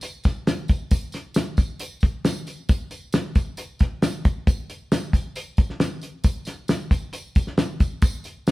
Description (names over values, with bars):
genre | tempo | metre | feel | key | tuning
soul | 135 BPM | 4/4 | straight | none | none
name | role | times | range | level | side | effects
cloth-damped thuddy drum kit | drums | 0.0-8.5 s | hi-hat, kick drum, snare drum | -20 LUFS | equal | none
tambourine | percussion | 0.0-8.5 s | none | -40 LUFS | right 1 dB | none
room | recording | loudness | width
moderate studio reverb, RT60 0.8 s | band playing live in one room | -22 LUFS | side -19 dB against mid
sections
0.0-8.5 A section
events
none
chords
none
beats
0.03 0.47 | 0.92 1.36 1.80 2.25 | 2.69 3.14 3.58 4.03 | 4.47 4.92 5.36 5.81 | 6.25 6.70 7.14 7.58 | 8.03 8.47